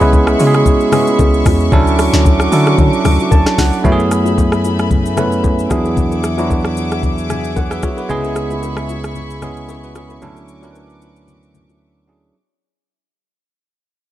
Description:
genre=amapiano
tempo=113 BPM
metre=4/4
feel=swing 55% on 16ths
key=unclear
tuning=A4 = 441 Hz
part: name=bell-like tine electric piano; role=accompaniment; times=0.0-12.4 s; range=F#3 to A5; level=-16 LUFS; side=right 2 dB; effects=none
part: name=warm symphonic string section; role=sustained chords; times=0.0-12.3 s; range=A3 to D6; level=-23 LUFS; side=left 3 dB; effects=sidechain pumping
part: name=deep log drum bass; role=bass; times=0.0-3.7 s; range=C#2 to D3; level=-14 LUFS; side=left 1 dB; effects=none
part: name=afro-pop drum kit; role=drums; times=0.0-11.8 s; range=hi-hat, kick drum, rim click, shaker, snare drum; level=-16 LUFS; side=equal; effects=none
part: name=bongos and congas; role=percussion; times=0.1-11.8 s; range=none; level=-25 LUFS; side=left 9 dB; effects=none
part: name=fingered electric bass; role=bass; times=3.8-12.3 s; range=C#2 to F#2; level=-22 LUFS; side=left 1 dB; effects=none
room=light reverb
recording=dark, warm production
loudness=-11 LUFS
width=side -13 dB against mid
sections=0.0-3.8 A section; 3.8-12.3 B section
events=tine electric piano fill 3.1-3.8, 7.0-8.1; fade-out 3.8-12.3; break 11.8-12.3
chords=0.0 C#m7; 1.7 Dmaj9; 3.8 F#m11; 5.7 E9; 8.1 C#m7; 10.2 Dmaj9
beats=0.13 0.66 1.19 | 1.72 2.25 2.79 3.32 | 3.85 4.38 4.91 5.44 | 5.97 6.50 7.03 7.56 | 8.10 8.63 9.16 9.69 | 10.22 10.75 11.28 11.81

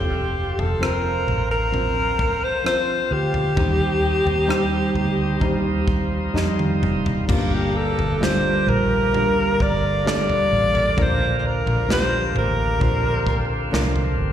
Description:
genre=pop ballad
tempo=65 BPM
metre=4/4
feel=straight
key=G minor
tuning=A4 = 440 Hz
part: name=clear alto saxophone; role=melody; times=0.0-13.7 s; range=F4 to D5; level=-22 LUFS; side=left 1 dB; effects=slapback echo, ping-pong delay
part: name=felt-muted upright piano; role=accompaniment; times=0.0-14.3 s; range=G2 to Eb5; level=-25 LUFS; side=right 1 dB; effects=slapback echo
part: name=bright tonewheel organ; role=sustained chords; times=0.0-14.3 s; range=D3 to Eb4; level=-28 LUFS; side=right 1 dB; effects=overdrive, slow rotary speaker
part: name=vintage muted fingered electric bass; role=bass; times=0.0-14.3 s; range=F1 to F2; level=-24 LUFS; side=equal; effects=none
part: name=natural country drum kit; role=drums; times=0.6-14.2 s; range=crash cymbal, kick drum, rim click, snare drum, toms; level=-26 LUFS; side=equal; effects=none
room=light reverb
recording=live gig heard through the venue's PA, recital hall reverb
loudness=-18 LUFS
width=side -10 dB against mid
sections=0.0-7.3 A section; 7.3-14.3 B section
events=drum fill 6.3-7.3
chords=0.0 F; 3.6 Cm; 7.3 Gm; 11.0 Bb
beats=0.81 1.73 2.65 | 3.56 4.48 5.41 6.34 | 7.28 8.21 9.14 10.06 | 10.98 11.89 12.81 13.72

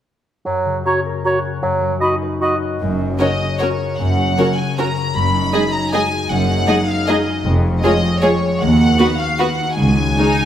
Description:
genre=classical, orchestral ballroom waltz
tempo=154 BPM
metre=3/4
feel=uneven beats, rubato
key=F# major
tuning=A4 = 440 Hz
part: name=warm bassoon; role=accompaniment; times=0.5-1.9 s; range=F#3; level=-22 LUFS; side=right 3 dB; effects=none
part: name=concert harp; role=arpeggios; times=0.5-10.5 s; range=E#2 to F#5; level=-21 LUFS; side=left 4 dB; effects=none
part: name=large flute ensemble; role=second line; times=0.9-2.5 s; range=A#5 to B5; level=-26 LUFS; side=right 1 dB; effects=none
part: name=warm clarinet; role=second line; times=0.9-2.6 s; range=F#4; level=-22 LUFS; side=equal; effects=none
part: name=warm oboe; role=second line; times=0.9-2.6 s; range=C#5 to D#5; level=-22 LUFS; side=right 2 dB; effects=none
part: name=dark studio double bass section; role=bass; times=2.8-10.1 s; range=E#1 to D#2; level=-23 LUFS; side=right 2 dB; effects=none
part: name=warm studio cello section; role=bass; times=2.8-10.1 s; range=C#2 to F#2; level=-20 LUFS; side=right 2 dB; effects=none
part: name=clear studio violin section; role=melody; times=3.2-10.5 s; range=C#5 to B5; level=-21 LUFS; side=left 2 dB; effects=none
part: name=warm studio violin section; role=second line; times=3.2-10.5 s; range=D#4 to D#5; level=-22 LUFS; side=equal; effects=none
part: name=dark studio viola section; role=accompaniment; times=3.2-10.3 s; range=G#3 to F#4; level=-21 LUFS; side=right 1 dB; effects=none
room=moderate recital hall reverb, RT60 1.6 s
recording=none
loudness=-15 LUFS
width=side -10 dB against mid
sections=0.5-2.8 A section; 2.8-10.5 B section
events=none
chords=0.5 F#; 1.6 B/F#; 2.8 F#; 5.2 G#m7/F#; 7.4 C#/E#; 8.6 B/D#; 9.8 C#sus4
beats=| 0.46 0.85 1.25 | 1.63 2.01 2.42 | 2.81 3.20 3.61 | 4.00 4.38 4.78 | 5.16 5.54 5.93 | 6.30 6.68 7.08 | 7.45 7.83 8.23 | 8.61 8.99 9.40 | 9.79 10.19

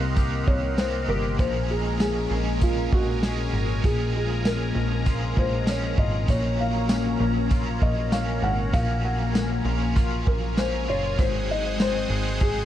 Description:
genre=dream pop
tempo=98 BPM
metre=4/4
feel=straight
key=Gb lydian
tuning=A4 = 440 Hz
part: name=felt-muted upright piano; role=melody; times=0.0-12.7 s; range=F4 to Gb5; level=-30 LUFS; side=left 1 dB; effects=tape echo
part: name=crunchy overdriven guitar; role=accompaniment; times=0.0-12.7 s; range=Ab2 to Ab4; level=-33 LUFS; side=right 3 dB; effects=tremolo, analog chorus
part: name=phased analog pad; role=sustained chords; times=0.0-12.7 s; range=Bb4 to Eb6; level=-33 LUFS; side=right 1 dB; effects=phaser, chorus
part: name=clean electric guitar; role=arpeggios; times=0.0-12.7 s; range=Ab2 to Ab4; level=-29 LUFS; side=left 4 dB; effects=analog chorus, tape echo
part: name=plucky analog bass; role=bass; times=0.0-12.7 s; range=Gb1 to C2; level=-27 LUFS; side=right 1 dB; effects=none
part: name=vintage drum kit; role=drums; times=0.2-12.6 s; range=hi-hat, kick drum, snare drum, tambourine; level=-25 LUFS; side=equal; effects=none
room=light reverb, small room ambience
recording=dark, warm production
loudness=-22 LUFS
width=side -12 dB against mid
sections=0.0-12.7 A section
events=none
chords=0.0 Cm7; 1.4 Bbm7; 6.3 Gbmaj7; 11.2 Ab7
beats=0.17 0.78 | 1.39 2.01 2.62 3.23 | 3.84 4.46 5.07 5.68 | 6.29 6.90 7.52 8.13 | 8.74 9.35 9.96 10.58 | 11.19 11.80 12.41

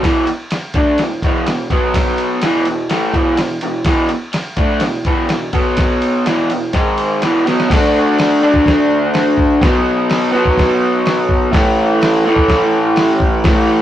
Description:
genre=garage rock duo or trio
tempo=125 BPM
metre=4/4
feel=straight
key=E major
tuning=A4 = 440 Hz
part: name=raw garage guitar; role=riff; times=0.0-13.8 s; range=E2 to D4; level=-13 LUFS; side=equal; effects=overdrive
part: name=lo-fi sampler-style drum kit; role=drums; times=0.0-13.6 s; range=crash cymbal, hi-hat, kick drum, ride cymbal, snare drum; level=-18 LUFS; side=equal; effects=none
room=moderate studio reverb, RT60 0.5 s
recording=rough rehearsal-room recording, warm saturation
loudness=-12 LUFS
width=side -12 dB against mid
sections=0.0-7.7 A section; 7.7-13.8 B section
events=drum fill 7.5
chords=0.0 E5; 1.7 B5; 2.4 E5; 5.5 B5; 6.3 E5; 6.7 G#5; 7.2 E5; 7.7 D5; 9.6 B5; 11.5 A5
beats=| 0.03 0.51 0.98 1.46 | 1.94 2.42 2.90 3.38 | 3.86 4.34 4.82 5.30 | 5.78 6.26 6.74 7.22 | 7.70 8.18 8.66 9.14 | 9.62 10.10 10.58 11.05 | 11.53 12.01 12.49 12.97 | 13.45

